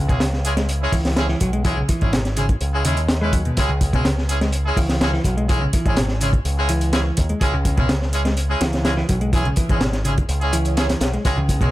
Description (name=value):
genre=breakbeat, breaks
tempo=125 BPM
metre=4/4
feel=straight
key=unclear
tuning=A4 = 443 Hz
part: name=picked electric bass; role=riff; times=0.0-11.7 s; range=Cb3 to Ab3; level=-25 LUFS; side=equal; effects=tape echo
part: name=picked electric bass with an envelope filter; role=bass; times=0.0-11.7 s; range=Ab1 to Eb2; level=-22 LUFS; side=equal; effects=none
part: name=brilliant horn section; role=stabs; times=0.1-11.7 s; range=Ab3 to Cb5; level=-26 LUFS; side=equal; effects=tape echo
part: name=crunchy breakbeat drum kit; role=drums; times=0.1-11.7 s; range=hi-hat, kick drum, snare drum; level=-21 LUFS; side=equal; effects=none
part: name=electronic hi-hat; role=drums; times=0.1-11.7 s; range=none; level=-34 LUFS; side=right 3 dB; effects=overdrive
part: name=swell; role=sound effects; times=10.5-11.3 s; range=none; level=-32 LUFS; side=right 4 dB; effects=none
part: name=congas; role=percussion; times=11.4-11.7 s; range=none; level=-29 LUFS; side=right 3 dB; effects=none
room=little or no reverb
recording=none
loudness=-17 LUFS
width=side -16 dB against mid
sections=0.0-11.7 A section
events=kick drops out 10.3-11.3; swell 10.5-11.3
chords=0.0 Dbm